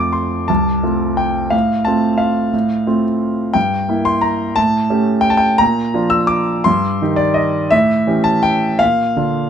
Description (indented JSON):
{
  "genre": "classical, piano waltz",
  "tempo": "148-187 BPM",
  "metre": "3/4",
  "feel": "rubato",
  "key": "F major",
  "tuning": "A4 = 440 Hz",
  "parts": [
    { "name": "warm concert grand piano", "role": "solo", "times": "0.0-9.5 s", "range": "C2 to E6", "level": "-13 LUFS", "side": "equal", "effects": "none" }
  ],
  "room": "light reverb",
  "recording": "close, detailed microphones",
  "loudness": "-13 LUFS",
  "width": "side -8 dB against mid",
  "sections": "0.0-9.5 A section",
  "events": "none",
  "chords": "0.0 F; 1.5 F/A; 3.6 Edim/G; 4.6 A7; 5.6 Bb; 6.7 Eb/G; 7.7 A7; 8.8 Bb"
}